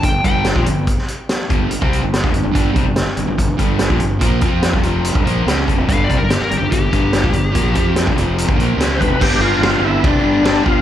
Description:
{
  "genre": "classic rock",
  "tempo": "144 BPM",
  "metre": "4/4",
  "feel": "straight",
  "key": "unclear",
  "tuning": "A4 = 440 Hz",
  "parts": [
    { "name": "smooth overdriven lead guitar", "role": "second line", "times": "0.0-0.5, 5.9-7.9 s", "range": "G4 to G5", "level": "-22 LUFS", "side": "left 2 dB", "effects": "slapback echo, tape echo" },
    { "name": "cranked stack guitar", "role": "riff", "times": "0.0-10.8 s", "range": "F2 to F4", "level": "-22 LUFS", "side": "left 10 dB", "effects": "overdrive, slapback echo" },
    { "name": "crunchy overdriven guitar", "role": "riff", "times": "0.0-10.8 s", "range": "F2 to F4", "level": "-22 LUFS", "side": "right 9 dB", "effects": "slapback echo" },
    { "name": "fuzz fingered electric bass", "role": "bass", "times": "0.0-10.8 s", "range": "F1 to F2", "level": "-20 LUFS", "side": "equal", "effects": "overdrive" },
    { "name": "vintage drum kit", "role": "drums", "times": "0.0-10.8 s", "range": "crash cymbal, hi-hat, kick drum, ride cymbal, snare drum", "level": "-18 LUFS", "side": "equal", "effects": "none" },
    { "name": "overdriven tonewheel organ", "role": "melody", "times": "9.0-10.8 s", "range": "D4 to C5", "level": "-17 LUFS", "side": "left 2 dB", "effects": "slow rotary speaker, chorus vibrato, slapback echo" }
  ],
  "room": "studio ambience",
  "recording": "live gig heard through the venue's PA, club reverb",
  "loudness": "-14 LUFS",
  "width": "side -11 dB against mid",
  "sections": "0.0-9.2 A section; 9.2-10.8 B section",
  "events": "none",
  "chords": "0.0 G5; 9.2 G",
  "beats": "0.03 0.45 | 0.87 1.29 1.71 2.12 | 2.54 2.96 3.38 3.79 | 4.21 4.63 5.04 5.46 | 5.88 6.29 6.71 7.13 | 7.54 7.96 8.37 8.79 | 9.20 9.62 10.03 10.45"
}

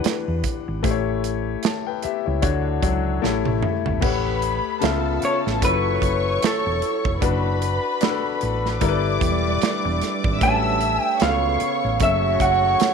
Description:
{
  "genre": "lush 1970s-style soul",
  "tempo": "75 BPM",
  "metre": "4/4",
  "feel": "swing 58% on 16ths",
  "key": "unclear",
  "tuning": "A4 = 440 Hz",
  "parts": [
    { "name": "electric guitar through a small old amp", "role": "melody", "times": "0.0-0.4, 5.2-12.9 s", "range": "A4 to A5", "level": "-22 LUFS", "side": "right 2 dB", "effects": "slapback echo" },
    { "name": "clear concert grand piano", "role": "accompaniment", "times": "0.0-12.9 s", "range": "C#3 to A5", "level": "-25 LUFS", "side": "left 13 dB", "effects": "none" },
    { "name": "hollow-body short-scale fingered electric bass", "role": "bass", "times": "0.0-12.8 s", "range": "E1 to E2", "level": "-25 LUFS", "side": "right 1 dB", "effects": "none" },
    { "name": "modern studio drum kit", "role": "drums", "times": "0.0-12.9 s", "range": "crash cymbal, hi-hat, kick drum, snare drum, toms", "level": "-24 LUFS", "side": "right 5 dB", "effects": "none" },
    { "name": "vibraphone with hard mallets", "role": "texture", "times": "0.0-11.2 s", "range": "G3 to B4", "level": "-33 LUFS", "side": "right 17 dB", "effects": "none" },
    { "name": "dark studio string section", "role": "second line", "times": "4.0-12.9 s", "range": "A4 to E6", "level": "-26 LUFS", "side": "left 3 dB", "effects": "none" },
    { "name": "bright trombone section", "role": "stabs", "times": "10.4-12.9 s", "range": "G2 to F#4", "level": "-29 LUFS", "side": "right 11 dB", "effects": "slapback echo" }
  ],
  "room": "light reverb, studio reverb",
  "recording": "1960s-style stereo with parts hard left and right",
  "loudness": "-19 LUFS",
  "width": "side -6 dB against mid",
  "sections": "0.0-4.0 A section; 4.0-12.9 B section",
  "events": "grand piano fill 2.8-4.0; drum fill 3.2-4.0",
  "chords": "0.0 Em9; 0.8 A7; 2.4 Dmaj7; 3.2 A7; 4.0 A13; 4.8 C#7alt; 5.6 F#m7; 7.2 D69/F#; 8.8 G69; 10.4 A13; 11.2 C#aug7; 12.0 F#m7",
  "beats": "0.05 | 0.84 1.64 2.44 3.24 | 4.03 4.83 5.63 6.43 | 7.22 8.02 8.82 9.62 | 10.41 11.21 12.01 12.81"
}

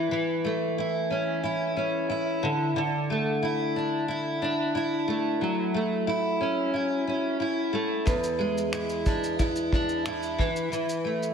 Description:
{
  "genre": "acoustic pop",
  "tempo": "90 BPM",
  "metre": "4/4",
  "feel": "straight",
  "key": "A major",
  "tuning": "A4 = 440 Hz",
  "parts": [
    { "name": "fingerpicked steel-string acoustic guitar", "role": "accompaniment", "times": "0.0-11.3 s", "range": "E2 to E4", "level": "-25 LUFS", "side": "equal", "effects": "double-tracked left and right" },
    { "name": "soft brush drum kit", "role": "drums", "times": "8.1-11.3 s", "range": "finger snaps, kick drum, shaker", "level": "-29 LUFS", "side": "equal", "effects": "none" }
  ],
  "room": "wet concert hall reverb, RT60 2.0 s, small room ambience",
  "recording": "big arena sound",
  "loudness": "-25 LUFS",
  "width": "side -6 dB against mid",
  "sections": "0.0-11.3 A section",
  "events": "none",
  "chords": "0.0 A/E; 2.4 Dsus2; 5.4 F#m7; 8.1 E7; 10.4 A5/E",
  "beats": "| 0.11 0.77 1.43 2.10 | 2.76 3.42 4.08 4.75 | 5.41 6.07 6.74 7.40 | 8.07 8.73 9.39 10.06 | 10.72"
}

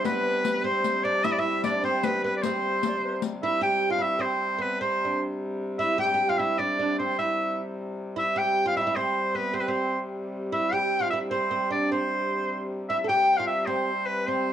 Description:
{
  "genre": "medieval dance",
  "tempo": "101 BPM (dotted quarters)",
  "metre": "6/8",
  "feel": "straight",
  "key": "C major",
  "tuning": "A4 = 439 Hz",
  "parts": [
    { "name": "bright shawm", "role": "melody", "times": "0.0-14.5 s", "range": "B4 to G5", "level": "-25 LUFS", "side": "equal", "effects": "cassette tape" },
    { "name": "mellow alto recorder", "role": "second line", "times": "0.0-3.2, 12.9-14.5 s", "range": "B4 to G5", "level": "-32 LUFS", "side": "left 8 dB", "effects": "cassette tape, plate reverb" },
    { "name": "oud", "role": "second line", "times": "0.0-14.5 s", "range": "B3 to A4", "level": "-31 LUFS", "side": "right 5 dB", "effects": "cassette tape" },
    { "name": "dark hurdy-gurdy", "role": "drone", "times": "0.0-14.5 s", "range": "C3 to G3", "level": "-33 LUFS", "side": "left 1 dB", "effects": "cassette tape" },
    { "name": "riq", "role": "percussion", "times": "0.1-3.4 s", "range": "none", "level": "-32 LUFS", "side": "left 10 dB", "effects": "none" }
  ],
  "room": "wet studio reverb, RT60 0.5 s",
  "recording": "home recording on cassette",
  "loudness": "-24 LUFS",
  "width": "side -10 dB against mid",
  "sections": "0.0-3.6 A section; 3.6-13.1 B section; 13.1-14.5 B section",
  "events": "none",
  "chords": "none",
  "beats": "| 0.06 0.65 | 1.25 1.84 | 2.43 3.03 | 3.62 4.21 | 4.81 5.40 | 6.00 6.59 | 7.18 7.77 | 8.37 8.96 | 9.55 10.14 | 10.73 11.32 | 11.91 12.51 | 13.10 13.69 | 14.28"
}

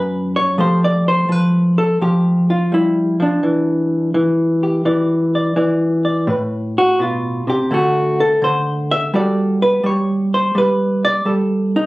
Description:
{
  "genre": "solo jazz",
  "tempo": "84 BPM",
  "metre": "4/4",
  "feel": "swing 68% on 8ths",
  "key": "unclear",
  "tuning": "A4 = 439 Hz",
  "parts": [
    { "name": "hollow-body jazz guitar", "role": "solo", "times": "0.0-11.9 s", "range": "F#2 to E5", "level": "-14 LUFS", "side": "equal", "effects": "none" }
  ],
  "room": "light reverb",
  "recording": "recorded on a phone in the room, studio ambience, compression",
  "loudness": "-14 LUFS",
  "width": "side -20 dB against mid",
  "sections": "0.0-11.9 A section",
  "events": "hollow-body jazz guitar solo 0.0-11.9",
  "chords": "0.0 F#7sus4; 0.6 Fadd9; 3.4 Em7; 6.3 Amadd9; 7.7 D5; 9.1 Gsus2",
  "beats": "| 0.58 1.29 2.01 2.72 | 3.43 4.14 4.85 5.57 | 6.28 6.99 7.70 8.41 | 9.13 9.84 10.55 11.26"
}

